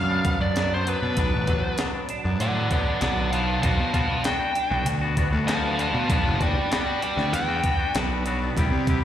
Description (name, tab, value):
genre	indie rock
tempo	97 BPM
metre	4/4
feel	straight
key	unclear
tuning	A4 = 440 Hz
part	fuzz lead guitar	melody	0.0-7.9 s	B4 to A5	-26 LUFS	equal	distortion, slapback echo, digital delay
part	cranked stack guitar	riff	0.0-9.0 s	F#3 to D4	-35 LUFS	right 7 dB	overdrive, ensemble chorus, slapback echo, digital delay
part	twangy electric guitar	riff	0.0-9.0 s	B2 to G4	-29 LUFS	left 6 dB	slapback echo
part	fuzz picked electric bass	bass	0.0-9.0 s	F#1 to C3	-26 LUFS	right 1 dB	overdrive
part	jungle sampler-style drum kit	drums	0.2-9.0 s	hi-hat, kick drum, snare drum	-26 LUFS	equal	overdrive
part	phased string machine	sustained chords	3.6-9.0 s	D4 to B5	-38 LUFS	equal	ensemble chorus, phaser
room	light reverb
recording	live gig heard through the venue's PA, recital hall reverb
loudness	-21 LUFS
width	side -10 dB against mid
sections	0.0-9.0 A section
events	lead electric guitar solo 0.0-9.0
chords	0.0 Bm; 3.6 Gmaj7/B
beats	0.56 | 1.18 1.79 2.40 3.02 | 3.64 4.25 4.87 5.49 | 6.10 6.72 7.33 7.95 | 8.57